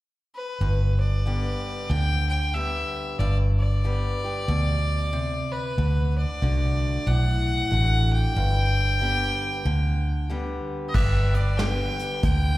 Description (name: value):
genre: honky-tonk and classic country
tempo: 93 BPM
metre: 4/4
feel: swing 62% on 8ths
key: G major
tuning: A4 = 441 Hz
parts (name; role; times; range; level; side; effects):
- bright fiddle; melody; 0.4-12.6 s; B4 to G5; -29 LUFS; left 1 dB; slapback echo
- picked acoustic archtop guitar; accompaniment; 0.6-12.6 s; G2 to G4; -32 LUFS; left 2 dB; slapback echo
- vintage muted fingered electric bass; bass; 0.6-12.6 s; G1 to D2; -22 LUFS; equal; none
- pedal steel guitar; sustained chords; 10.9-12.6 s; B4 to D5; -36 LUFS; right 1 dB; lush chorus
- soft brush drum kit; drums; 10.9-12.4 s; crash cymbal, hi-hat, kick drum, snare drum; -27 LUFS; equal; none
room: studio reverb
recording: live gig heard through the venue's PA, recital hall reverb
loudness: -22 LUFS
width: side -17 dB against mid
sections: 0.6-10.9 A section; 10.9-12.6 B section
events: none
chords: 0.0 N.C.; 0.6 G; 5.8 D; 8.4 G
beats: | 0.60 1.25 1.90 2.54 | 3.19 3.84 4.48 5.13 | 5.78 6.42 7.07 7.71 | 8.36 9.01 9.65 10.30 | 10.94 11.59 12.23